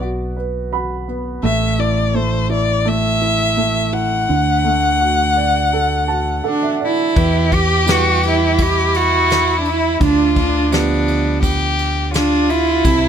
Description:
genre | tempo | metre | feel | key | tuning
acoustic folk-pop ballad | 84 BPM | 4/4 | straight | E minor | A4 = 440 Hz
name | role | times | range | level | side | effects
dark upright piano | accompaniment | 0.0-13.1 s | C3 to B5 | -22 LUFS | right 4 dB | none
fingered electric bass | bass | 0.0-13.1 s | A1 to E2 | -20 LUFS | equal | none
rich violin | second line | 1.4-13.1 s | D4 to F#5 | -19 LUFS | left 3 dB | none
rich cello | melody | 6.5-13.1 s | B3 to G4 | -16 LUFS | right 2 dB | none
soft brush drum kit | drums | 7.2-13.0 s | kick drum, ride cymbal, snare drum | -22 LUFS | equal | none
room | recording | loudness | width
little or no reverb | close, detailed microphones | -14 LUFS | side -8 dB against mid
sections
0.0-7.2 A section; 7.2-13.1 B section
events
violin solo 0.0-7.2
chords
0.0 B5; 1.4 A5; 4.3 D; 7.2 Em; 10.0 G7/D

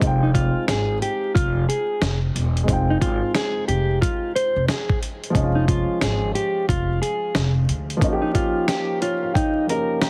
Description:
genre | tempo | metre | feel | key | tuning
hip hop, boom-bap hip-hop | 90 BPM | 4/4 | swing 62% on 16ths | F minor | A4 = 441 Hz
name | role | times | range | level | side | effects
dark baby grand piano | accompaniment | 0.0-10.1 s | F3 to Bb5 | -29 LUFS | equal | cassette tape
upright bass | bass | 0.0-8.0 s | E1 to D2 | -24 LUFS | equal | none
dusty soul sampler-style drum kit | drums | 0.0-10.1 s | hi-hat, kick drum, snare drum | -26 LUFS | equal | none
mellow electric guitar | melody | 0.2-10.1 s | Eb4 to C5 | -26 LUFS | equal | subtle chorus
room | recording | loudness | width
small room ambience | heavily compressed radio sound, vinyl crackle | -22 LUFS | mono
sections
0.0-10.1 A section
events
none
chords
0.0 Fm7; 5.4 Db/F; 8.0 Eb7

